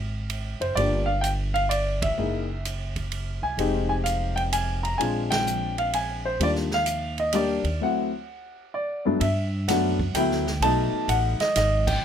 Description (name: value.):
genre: jazz piano trio.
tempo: 128 BPM.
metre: 3/4.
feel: swing 67% on 8ths.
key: unclear.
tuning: A4 = 439 Hz.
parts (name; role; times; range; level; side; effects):
upright bass; bass; 0.0-12.0 s; F1 to G2; -28 LUFS; equal; none.
open jazz drum kit; drums; 0.3-11.9 s; crash cymbal, hi-hat, kick drum, ride cymbal, snare drum; -32 LUFS; right 4 dB; none.
warm baby grand piano; melody; 0.6-12.0 s; D2 to Bb5; -24 LUFS; left 1 dB; none.
room: little or no reverb.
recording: close, detailed microphones.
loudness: -22 LUFS.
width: side -8 dB against mid.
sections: 0.0-9.2 A section; 9.2-12.0 B section.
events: band accent 1.9, 5.2, 11.8; break 7.8-9.2.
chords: 0.0 Ab7(no3); 0.8 G7(no3); 2.2 Gb7sus2; 3.6 Fm7; 5.0 Bb7; 6.4 Ebmaj7; 7.8 D; 9.2 Gmaj7; 10.6 B7.